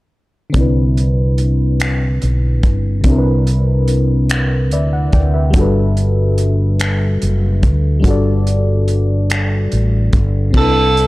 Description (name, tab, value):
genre	slow six-eight R&B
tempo	48 BPM (dotted quarters)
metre	6/8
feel	straight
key	C lydian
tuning	A4 = 437 Hz
part	FM electric piano	accompaniment	0.5-11.1 s	C3 to G5	-19 LUFS	left 2 dB	chorus, low-pass filter
part	warm soul drum kit	drums	0.5-11.1 s	crash cymbal, finger snaps, hi-hat, kick drum	-17 LUFS	equal	none
part	fretless electric bass	bass	0.6-11.1 s	F#1 to D2	-14 LUFS	equal	none
part	breathy tenor saxophone	melody	10.6-11.1 s	A4	-13 LUFS	right 2 dB	none
room	small room ambience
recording	dry, gritty hardware recording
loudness	-12 LUFS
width	side -19 dB against mid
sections	0.5-10.5 A section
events	FM electric piano fill 4.3-5.5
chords	0.5 Cmaj9; 5.5 Gmaj9; 10.5 Cmaj9